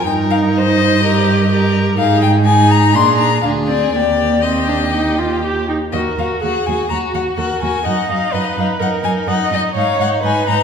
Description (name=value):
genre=quick classical-period movement for string quartet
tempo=125 BPM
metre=4/4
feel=rubato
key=Eb major, Eb minor from 5.9 s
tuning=A4 = 440 Hz
part: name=warm violin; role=melody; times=0.0-10.6 s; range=D5 to C6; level=-18 LUFS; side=left 7 dB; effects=none
part: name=rich violin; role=second line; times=0.0-10.6 s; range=Eb4 to C5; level=-22 LUFS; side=left 2 dB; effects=none
part: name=rich viola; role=accompaniment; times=0.0-10.6 s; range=Bb3 to Eb5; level=-19 LUFS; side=right 3 dB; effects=none
part: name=rich cello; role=bass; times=0.0-10.6 s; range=D2 to Bb2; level=-18 LUFS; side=right 3 dB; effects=none
room=wet recital hall reverb, RT60 1.7 s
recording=heard from further back in the room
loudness=-13 LUFS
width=side -7 dB against mid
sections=0.0-5.9 A section; 5.9-10.6 B section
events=none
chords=0.1 Eb/G; 2.0 Fm11/Ab; 2.9 Bb7; 3.9 Eb; 5.9 Ebm; 7.9 Ebm/Gb; 9.8 Abmadd11